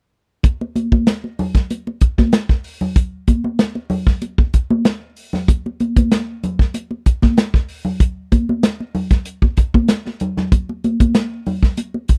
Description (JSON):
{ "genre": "funk", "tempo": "95 BPM", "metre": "4/4", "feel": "straight", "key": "none", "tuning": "none", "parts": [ { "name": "warm soul drum kit", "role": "drums", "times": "0.4-12.2 s", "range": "hi-hat, kick drum, snare drum", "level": "-16 LUFS", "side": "equal", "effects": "none" }, { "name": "congas", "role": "percussion", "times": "0.4-12.1 s", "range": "none", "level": "-22 LUFS", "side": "equal", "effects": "none" } ], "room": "little or no reverb", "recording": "none", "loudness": "-18 LUFS", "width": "mono", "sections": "0.4-12.2 A section", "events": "none", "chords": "none", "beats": "| 0.44 1.07 1.70 2.33 | 2.96 3.60 4.22 4.86 | 5.49 6.12 6.75 7.38 | 8.01 8.63 9.26 9.89 | 10.52 11.15 11.78" }